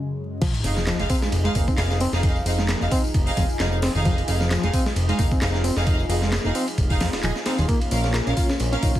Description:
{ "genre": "breakbeat, breaks", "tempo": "132 BPM", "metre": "4/4", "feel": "swing 55% on 16ths", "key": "F minor", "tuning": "A4 = 439 Hz", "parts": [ { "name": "phased analog pad", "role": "sustained chords", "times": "0.0-9.0 s", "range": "Gb2 to Ab4", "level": "-32 LUFS", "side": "left 1 dB", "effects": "phaser, chorus, sidechain pumping" }, { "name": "reed electric piano", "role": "riff", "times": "0.4-9.0 s", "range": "Eb3 to F4", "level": "-27 LUFS", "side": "left 1 dB", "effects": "fast tremolo, ping-pong delay" }, { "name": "breakbeat sampler-style drum kit", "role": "drums", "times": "0.4-9.0 s", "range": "crash cymbal, kick drum, ride cymbal, snare drum", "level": "-24 LUFS", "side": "equal", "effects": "none" }, { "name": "house drum kit", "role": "drums", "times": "0.4-9.0 s", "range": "handclaps, hi-hat, tambourine", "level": "-33 LUFS", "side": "left 1 dB", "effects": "none" }, { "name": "sub drop", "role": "sound effects", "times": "0.5-2.2 s", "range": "none", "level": "-32 LUFS", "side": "equal", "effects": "none" }, { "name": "rich symphonic string section", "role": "stabs", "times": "0.6-8.8 s", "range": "Db4 to Ab5", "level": "-29 LUFS", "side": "right 3 dB", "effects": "ping-pong delay" }, { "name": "fat analog bass", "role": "bass", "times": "0.6-9.0 s", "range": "Eb1 to F2", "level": "-24 LUFS", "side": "equal", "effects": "none" } ], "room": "light reverb", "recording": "dense, heavily limited modern master, vinyl crackle", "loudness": "-20 LUFS", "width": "side -13 dB against mid", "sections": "0.4-9.0 A section", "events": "break 0.0-0.4; drop 0.4-9.0; impact 0.4-2.2", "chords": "0.4 Fm7; 7.7 Ebsus2 (rootless)" }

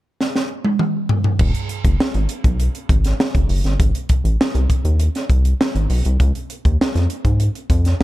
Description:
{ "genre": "polished 1980s jazz-funk pop", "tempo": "100 BPM", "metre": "4/4", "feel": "straight", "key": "unclear", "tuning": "A4 = 440 Hz", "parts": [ { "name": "crisp fusion drum kit", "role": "drums", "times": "0.2-8.0 s", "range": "crash cymbal, hi-hat, kick drum, snare drum, toms", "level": "-18 LUFS", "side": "equal", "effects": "none" }, { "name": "rubbery square bass", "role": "bass", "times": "1.4-8.0 s", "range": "E1 to G#2", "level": "-17 LUFS", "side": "equal", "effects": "none" } ], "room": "little or no reverb", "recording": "dark, warm production", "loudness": "-16 LUFS", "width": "side -16 dB against mid", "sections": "0.0-1.4 A section; 1.4-8.0 B section", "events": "drum fill 0.2-1.4", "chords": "none" }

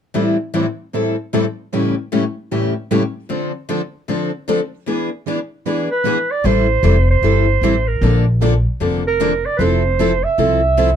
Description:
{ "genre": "acoustic string swing (jazz manouche)", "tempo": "152 BPM", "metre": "4/4", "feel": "swing 64% on 8ths", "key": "A minor", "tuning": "A4 = 439 Hz", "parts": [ { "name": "picked plugged-in steel-string acoustic guitar", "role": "accompaniment", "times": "0.1-10.9 s", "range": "A2 to B4", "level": "-23 LUFS", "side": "right 9 dB", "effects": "none" }, { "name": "picked steel-string acoustic guitar", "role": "accompaniment", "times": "0.1-10.9 s", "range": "A2 to A4", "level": "-19 LUFS", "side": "left 6 dB", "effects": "none" }, { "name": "clear clarinet", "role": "melody", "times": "5.9-11.0 s", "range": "Bb4 to E5", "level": "-17 LUFS", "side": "right 4 dB", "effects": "none" }, { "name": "upright bass", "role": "bass", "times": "6.4-11.0 s", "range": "F1 to C2", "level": "-16 LUFS", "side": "equal", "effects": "none" } ], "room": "light reverb", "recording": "dark, warm production", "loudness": "-15 LUFS", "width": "side -9 dB against mid", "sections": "0.1-6.4 A section; 6.4-11.0 B section", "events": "none", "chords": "0.1 Am7; 1.7 A7; 3.3 Dm7; 4.9 E7; 6.4 Am7; 8.0 Bbmaj7; 9.6 Fmaj7" }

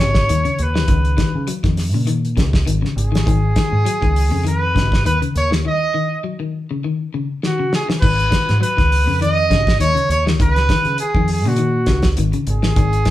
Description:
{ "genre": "afrobeat", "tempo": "101 BPM", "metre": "4/4", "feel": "swing 54% on 16ths", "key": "unclear", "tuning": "A4 = 442 Hz", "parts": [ { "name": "clear trumpet", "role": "melody", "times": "0.0-13.1 s", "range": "F#4 to D#5", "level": "-20 LUFS", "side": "right 1 dB", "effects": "none" }, { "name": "electric guitar at the edge of break-up", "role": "arpeggios", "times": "0.0-13.1 s", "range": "C#3 to F#3", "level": "-22 LUFS", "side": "left 5 dB", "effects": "none" }, { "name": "deep dub fingered electric bass", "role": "bass", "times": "0.0-13.0 s", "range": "G#1 to C#3", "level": "-18 LUFS", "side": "equal", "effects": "none" }, { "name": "damped 70s drum kit", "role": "drums", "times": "0.1-13.1 s", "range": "crash cymbal, hi-hat, kick drum, snare drum", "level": "-19 LUFS", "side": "equal", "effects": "none" } ], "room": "moderate large studio reverb, RT60 0.8 s", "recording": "band playing live in one room", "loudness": "-15 LUFS", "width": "side -14 dB against mid", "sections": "0.0-8.0 A section; 8.0-13.1 A section", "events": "break 5.6-8.0; drum fill 7.4-8.0", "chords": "0.0 G#5; 0.9 C#7sus2; 3.3 G#m; 5.6 C#sus2; 8.0 G#m; 10.4 C#9sus4" }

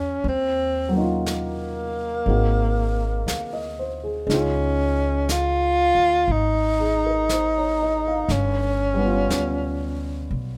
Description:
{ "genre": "jazz", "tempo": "60 BPM", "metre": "4/4", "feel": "swing 67% on 8ths", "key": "unclear", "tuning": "A4 = 444 Hz", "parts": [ { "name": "breathy tenor saxophone", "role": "melody", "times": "0.0-10.3 s", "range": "Bb3 to F4", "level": "-25 LUFS", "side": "equal", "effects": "none" }, { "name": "dark baby grand piano", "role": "accompaniment", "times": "0.0-10.6 s", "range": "Gb3 to F5", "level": "-29 LUFS", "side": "equal", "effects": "none" }, { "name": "upright bass", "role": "bass", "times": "0.0-10.6 s", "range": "G1 to E2", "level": "-28 LUFS", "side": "equal", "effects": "none" }, { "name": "jazz brush drum kit", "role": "drums", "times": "0.2-10.6 s", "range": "brushed snare drum, hi-hat, snare drum", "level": "-35 LUFS", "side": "equal", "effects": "none" } ], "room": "light reverb", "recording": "none", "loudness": "-22 LUFS", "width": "mono", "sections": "0.0-10.6 A section", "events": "none", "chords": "0.2 Ebm9; 2.3 Ab7; 4.3 Dbadd9; 8.3 G7#11" }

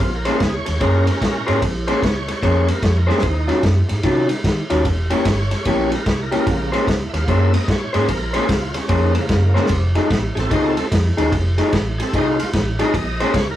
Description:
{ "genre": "electric blues shuffle", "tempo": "148 BPM", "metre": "4/4", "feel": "swing 63% on 8ths", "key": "Bb minor", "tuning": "A4 = 440 Hz", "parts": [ { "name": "bright tonewheel organ", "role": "accompaniment", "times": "0.0-13.6 s", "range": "Db3 to F5", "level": "-27 LUFS", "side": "right 1 dB", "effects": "slow rotary speaker, overdrive, chorus vibrato" }, { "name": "electric guitar through a small old amp", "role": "riff", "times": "0.0-13.4 s", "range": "Eb3 to C5", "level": "-20 LUFS", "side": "left 1 dB", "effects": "none" }, { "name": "vintage muted fingered electric bass", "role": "bass", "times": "0.0-13.5 s", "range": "E1 to Eb3", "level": "-20 LUFS", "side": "equal", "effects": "none" }, { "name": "vintage drum kit", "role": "drums", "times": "0.0-13.5 s", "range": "kick drum, ride cymbal, snare drum, splash cymbal", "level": "-21 LUFS", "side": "equal", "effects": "none" } ], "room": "wet booth ambience, RT60 0.2 s", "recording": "rough rehearsal-room recording, warm saturation", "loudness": "-16 LUFS", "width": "side -12 dB against mid", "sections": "0.0-13.6 A section", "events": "drum fill 3.0, 9.5", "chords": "0.0 Bbm9; 3.2 Ebm9; 4.9 Edim7; 6.5 Bbm9; 9.7 F7#9; 12.9 Bbm9" }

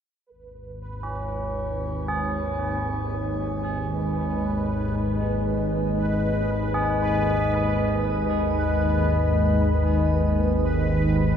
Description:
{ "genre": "dark ambient drone", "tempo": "free time", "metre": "none", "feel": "none", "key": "G# minor", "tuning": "A4 = 440 Hz", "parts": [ { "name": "deep dark ambient pad", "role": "sustained chords", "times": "1.3-11.4 s", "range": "G#3 to D#5", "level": "-26 LUFS", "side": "left 2 dB", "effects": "chorus, built-in reverb, shimmer reverb" }, { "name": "organ-like drone", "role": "drone", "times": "0.6-11.4 s", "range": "G#1 to D#2", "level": "-25 LUFS", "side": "equal", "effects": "ensemble chorus, built-in reverb" }, { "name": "bubbling stepped-filter texture", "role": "texture", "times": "0.3-11.4 s", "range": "B4", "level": "-32 LUFS", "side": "right 3 dB", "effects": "chorus, built-in reverb, shimmer reverb" }, { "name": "tubular bells", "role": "arpeggios", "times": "1.0-11.4 s", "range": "C#4 to G#4", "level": "-31 LUFS", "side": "right 3 dB", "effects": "analog delay, shimmer reverb" } ], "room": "wet cathedral reverb, RT60 6.5 s", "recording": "dreamy mix soaked in reverb", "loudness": "-22 LUFS", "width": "side -8 dB against mid", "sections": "0.3-11.4 A section", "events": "filter sweep on synth drone 0.3-11.4", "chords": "0.3 G#5" }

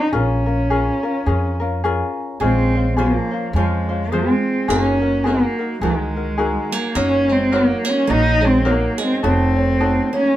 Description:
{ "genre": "Hawaiian", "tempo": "105 BPM", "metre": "4/4", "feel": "swing 59% on 8ths", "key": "Bb minor", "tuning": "A4 = 440 Hz", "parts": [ { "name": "dark cello", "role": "melody", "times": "0.0-10.4 s", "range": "Ab3 to Eb4", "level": "-19 LUFS", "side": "equal", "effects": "none" }, { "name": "ukulele", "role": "accompaniment", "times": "0.0-10.4 s", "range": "Db4 to Db5", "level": "-22 LUFS", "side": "left 2 dB", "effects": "none" }, { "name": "upright bass", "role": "bass", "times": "0.1-10.0 s", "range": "F1 to F2", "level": "-21 LUFS", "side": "equal", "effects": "none" }, { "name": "picked steel-string acoustic guitar", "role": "second line", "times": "2.4-10.4 s", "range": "Eb3 to Bb3", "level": "-25 LUFS", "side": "right 6 dB", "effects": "none" } ], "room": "moderate studio reverb, RT60 0.6 s", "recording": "minimal, uncompressed stereo recording", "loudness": "-16 LUFS", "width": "side -13 dB against mid", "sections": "0.0-2.4 A section; 2.4-10.4 A section", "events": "none", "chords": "0.1 Bbm7; 2.4 Bbm9; 4.7 Gb69; 7.0 Ebm7/Gb; 9.2 F7b9b13" }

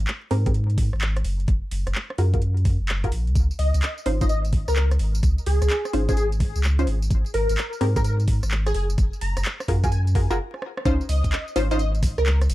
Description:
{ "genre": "UK garage, two-step garage", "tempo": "128 BPM", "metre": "4/4", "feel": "swing 66% on 16ths", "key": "Db major", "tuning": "A4 = 440 Hz", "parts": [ { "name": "saturated sub bass", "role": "bass", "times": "0.0-12.5 s", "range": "Gb1 to Ab2", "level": "-22 LUFS", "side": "equal", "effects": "sidechain pumping" }, { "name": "garage drum kit", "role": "drums", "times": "0.1-12.5 s", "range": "handclaps, hi-hat, rim click, tambourine", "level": "-32 LUFS", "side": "right 1 dB", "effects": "overdrive" }, { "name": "punchy chord stab", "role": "stabs", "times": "0.3-11.8 s", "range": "C4 to C5", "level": "-27 LUFS", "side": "equal", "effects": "chorus" }, { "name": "electronic kick drum", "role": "drums", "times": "0.5-12.1 s", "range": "none", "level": "-23 LUFS", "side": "equal", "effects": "overdrive" }, { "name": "plucky unison lead", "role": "melody", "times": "3.6-12.4 s", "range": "Ab4 to Bb5", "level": "-29 LUFS", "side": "equal", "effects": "ensemble chorus, ping-pong delay" } ], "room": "light reverb", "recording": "dark, warm production, vinyl crackle", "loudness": "-20 LUFS", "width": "side -16 dB against mid", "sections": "0.0-10.9 A section; 10.9-12.5 B section", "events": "filter sweep on synth stab 0.0-10.9; break 10.4-10.9; drum fill 10.5-10.9; band accent 10.7; drop 10.9-12.5", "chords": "0.0 Abmaj9; 1.2 Gbmaj9; 3.4 Dbmaj9; 6.9 Absus2; 8.7 Gbmaj9; 10.9 Dbmaj9" }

